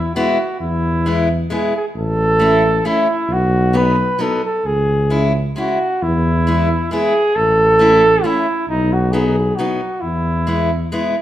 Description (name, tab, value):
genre	alpine folk, alpine dance band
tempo	134 BPM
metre	3/4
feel	straight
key	E major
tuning	A4 = 444 Hz
part	mellow flugelhorn	melody	0.0-11.2 s	D#4 to B4	-16 LUFS	right 1 dB	none
part	mellow tuba	bass	0.0-10.9 s	A1 to E2	-19 LUFS	equal	none
part	fingerpicked steel-string acoustic guitar	accompaniment	0.2-11.1 s	F#3 to E4	-20 LUFS	left 2 dB	none
room	moderate recital hall reverb, RT60 1.3 s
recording	minimal, uncompressed stereo recording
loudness	-14 LUFS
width	side -12 dB against mid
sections	0.6-11.2 A section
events	none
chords	0.0 E; 2.0 A; 3.3 B; 4.7 C#m; 6.0 E; 7.4 A; 8.7 B; 10.0 E